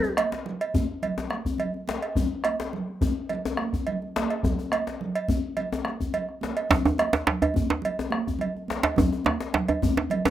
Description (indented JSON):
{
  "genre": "west african traditional, West African drum ensemble",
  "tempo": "106 BPM",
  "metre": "4/4",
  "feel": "straight",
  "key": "none",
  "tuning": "none",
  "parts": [
    { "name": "djembe", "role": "percussion", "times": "0.0-10.3 s", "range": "none", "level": "-29 LUFS", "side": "left 4 dB", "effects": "none" },
    { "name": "bombo", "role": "percussion", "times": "0.2-10.0 s", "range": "none", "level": "-29 LUFS", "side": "equal", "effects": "none" },
    { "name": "congas", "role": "percussion", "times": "0.2-10.2 s", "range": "none", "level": "-32 LUFS", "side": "right 4 dB", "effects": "none" },
    { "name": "cowbell", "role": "percussion", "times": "0.2-10.2 s", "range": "none", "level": "-28 LUFS", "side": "right 4 dB", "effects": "none" },
    { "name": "djembe", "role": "percussion", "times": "6.7-10.3 s", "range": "none", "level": "-23 LUFS", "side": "right 4 dB", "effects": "none" }
  ],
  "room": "moderate small room reverb, RT60 0.5 s",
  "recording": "rough home demo mix",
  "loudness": "-24 LUFS",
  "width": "side -12 dB against mid",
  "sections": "0.0-6.7 A section; 6.7-10.3 B section",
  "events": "none",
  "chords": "none"
}